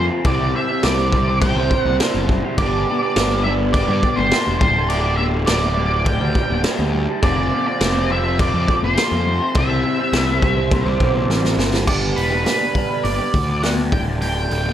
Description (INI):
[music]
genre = psychedelic rock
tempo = 103 BPM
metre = 4/4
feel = straight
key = unclear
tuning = A4 = 440 Hz
[part]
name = octave-fuzz lead guitar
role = melody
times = 0.0-14.7 s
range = B4 to G5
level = -22 LUFS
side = right 1 dB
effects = distortion, analog delay
[part]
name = electric guitar through a small old amp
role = riff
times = 0.0-14.7 s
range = D2 to C5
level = -22 LUFS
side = right 2 dB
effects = phaser
[part]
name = fuzz picked electric bass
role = bass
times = 0.0-14.7 s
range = D1 to G2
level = -22 LUFS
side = equal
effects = overdrive
[part]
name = raw garage drum kit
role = drums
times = 0.2-14.6 s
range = crash cymbal, hi-hat, kick drum, snare drum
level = -21 LUFS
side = equal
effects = none
[part]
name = congas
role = percussion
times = 1.1-14.7 s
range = none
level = -31 LUFS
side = left 6 dB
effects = none
[sound]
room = light reverb, small room ambience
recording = none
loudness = -16 LUFS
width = side -10 dB against mid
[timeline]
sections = 0.0-11.9 A section; 11.9-14.7 B section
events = drum fill 11.3-11.9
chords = 0.2 C; 2.6 G; 4.6 Dsus4; 7.2 F; 9.6 C; 11.9 G; 13.9 Dsus4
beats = | 0.25 0.83 1.41 2.00 | 2.58 3.16 3.74 4.32 | 4.90 5.49 6.07 6.65 | 7.23 7.81 8.39 8.97 | 9.55 10.14 10.72 11.30 | 11.88 12.47 13.05 13.64 | 14.22